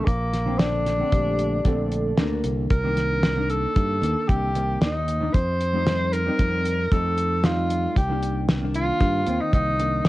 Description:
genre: progressive instrumental, band music in an uneven meter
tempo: 114 BPM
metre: 5/4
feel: straight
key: unclear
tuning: A4 = 440 Hz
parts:
  - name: warm tenor saxophone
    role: melody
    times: 0.0-10.1 s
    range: Bb3 to C5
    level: -25 LUFS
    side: equal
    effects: cassette tape
  - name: hollow-body jazz guitar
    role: accompaniment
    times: 0.0-10.1 s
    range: D3 to D5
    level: -29 LUFS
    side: left 1 dB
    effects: double-tracked left and right
  - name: modern bright fingered electric bass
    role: bass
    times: 0.1-10.1 s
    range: Bb1 to G2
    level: -26 LUFS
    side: equal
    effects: none
  - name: damped 70s drum kit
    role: drums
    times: 0.1-10.1 s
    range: hi-hat, kick drum, snare drum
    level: -22 LUFS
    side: equal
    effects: cassette tape
  - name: vibraphone with medium hard mallets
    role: second line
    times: 1.1-2.5 s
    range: G4 to Bb4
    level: -31 LUFS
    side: right 2 dB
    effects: none
room: small room ambience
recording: home recording on cassette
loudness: -20 LUFS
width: side -17 dB against mid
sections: 0.0-10.1 A section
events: none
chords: 0.1 Bbmaj7; 2.7 Cm7; 5.3 F7; 8.0 Cm7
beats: | 0.07 0.60 1.13 1.65 2.18 | 2.71 3.23 3.76 4.29 4.81 | 5.34 5.86 6.39 6.91 7.44 | 7.96 8.48 9.01 9.53 10.05

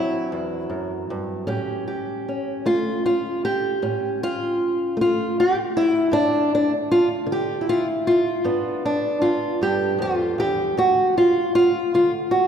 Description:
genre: acoustic country blues, solo or duo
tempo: 52 BPM (dotted quarters)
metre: 12/8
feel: straight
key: unclear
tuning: A4 = 440 Hz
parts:
  - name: fingerpicked old ladder-braced acoustic guitar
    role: solo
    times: 0.0-12.5 s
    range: D2 to G4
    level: -19 LUFS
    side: equal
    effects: none
room: wet church reverb, RT60 3.0 s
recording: recorded in a church or concert hall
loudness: -19 LUFS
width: side -8 dB against mid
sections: 0.0-12.5 A section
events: none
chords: 0.0 D7 (rootless); 1.5 A7; 6.1 G7; 10.8 N.C.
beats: 0.31 | 1.47 2.64 3.80 4.96 | 6.12 7.29 8.45 9.61 | 10.77 11.93

